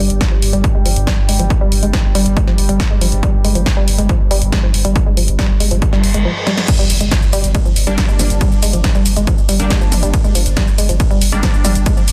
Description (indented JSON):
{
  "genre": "driving peak-time techno",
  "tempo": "139 BPM",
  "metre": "4/4",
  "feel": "straight",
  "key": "G phrygian",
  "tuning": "A4 = 440 Hz",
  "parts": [
    { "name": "woody wave-folded pluck", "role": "riff", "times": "0.0-12.0 s", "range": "F3 to Ab3", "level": "-23 LUFS", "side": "equal", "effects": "chorus, tube saturation, sidechain pumping, delay" },
    { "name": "saturated sub bass", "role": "bass", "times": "0.0-12.1 s", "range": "G1", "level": "-20 LUFS", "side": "equal", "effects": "overdrive, sidechain pumping, low-pass filter" },
    { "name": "analog drone", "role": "drone", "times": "0.0-6.3 s", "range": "G2 to G3", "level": "-27 LUFS", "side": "equal", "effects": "chorus, sidechain pumping" },
    { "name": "punchy analog drum machine", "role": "drums", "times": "0.1-12.1 s", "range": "crash cymbal, hi-hat, ride cymbal, shaker, snare drum, toms", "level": "-23 LUFS", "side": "equal", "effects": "overdrive, sidechain pumping on hats, sidechain pumping on cymbals, sidechain pumping on perc, sidechain pumping on toms" },
    { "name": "electronic kick drum", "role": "drums", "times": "0.2-11.9 s", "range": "none", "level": "-18 LUFS", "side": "equal", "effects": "none" },
    { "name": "reverse cymbal and impact", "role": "sound effects", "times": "5.9-8.4 s", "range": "none", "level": "-27 LUFS", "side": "equal", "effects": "none" },
    { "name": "rave stab", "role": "stabs", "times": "7.9-12.1 s", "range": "G3 to D4", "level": "-26 LUFS", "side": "equal", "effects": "chorus, built-in reverb, sidechain pumping, digital delay" }
  ],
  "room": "light reverb",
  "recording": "dense, heavily limited modern master",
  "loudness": "-14 LUFS",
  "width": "mono",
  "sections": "0.0-6.7 A section; 6.7-12.1 B section",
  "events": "reverse cymbal 6.0-6.7; drum fill 6.5; drop 6.7-12.1; impact 6.7-8.4",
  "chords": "0.0 N.C.; 6.7 Gm",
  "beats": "0.21 0.64 1.07 | 1.50 1.94 2.37 2.80 | 3.23 3.66 4.09 4.53 | 4.96 5.39 5.82 6.25 | 6.68 7.12 7.55 7.98 | 8.41 8.84 9.27 9.71 | 10.14 10.57 11.00 11.43 | 11.86"
}